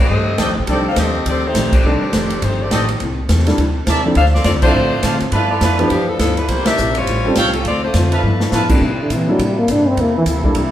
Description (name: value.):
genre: jazz, big band swing.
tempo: 206 BPM.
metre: 4/4.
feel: swing 60% on 8ths.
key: C mixolydian.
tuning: A4 = 440 Hz.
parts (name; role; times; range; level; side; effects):
edgy saxophone section; melody; 0.0-8.7 s; F3 to F5; -19 LUFS; left 1 dB; none.
upright bass; bass; 0.0-10.7 s; F1 to C3; -19 LUFS; equal; none.
picked steel-string acoustic guitar; accompaniment; 0.1-10.7 s; F2 to A4; -23 LUFS; left 2 dB; none.
bright trumpet section; stabs; 0.4-8.6 s; A4 to A5; -22 LUFS; right 3 dB; none.
swinging big-band drum kit; drums; 0.4-10.6 s; crash cymbal, hi-hat, kick drum, ride cymbal, snare drum; -20 LUFS; equal; none.
warm concert grand piano; accompaniment; 0.7-10.6 s; C3 to A4; -20 LUFS; equal; none.
muted trombone section; sustained chords; 8.8-10.7 s; C3 to E4; -26 LUFS; right 2 dB; none.
mellow trombone; melody; 9.0-10.2 s; D3 to D4; -16 LUFS; equal; none.
room: wet large studio reverb, RT60 1.2 s.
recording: band playing live in one room.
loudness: -13 LUFS.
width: side -12 dB against mid.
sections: 0.0-8.8 A section; 8.8-10.7 B section.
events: band accent 1.7, 4.6, 6.6; drum fill 8.2; trombone solo 8.8-10.7.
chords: 0.0 F13; 3.0 C13; 4.2 Dm7; 5.3 G13; 6.5 C13; 7.1 A7alt; 7.7 Dm7; 8.2 G13; 8.8 C13.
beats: 0.09 0.38 | 0.68 0.97 1.26 1.55 | 1.84 2.13 2.42 2.71 | 3.00 3.30 3.59 3.88 | 4.17 4.46 4.75 5.04 | 5.33 5.62 5.91 6.20 | 6.49 6.78 7.07 7.36 | 7.65 7.94 8.23 8.52 | 8.81 9.11 9.39 9.69 | 9.98 10.27 10.56.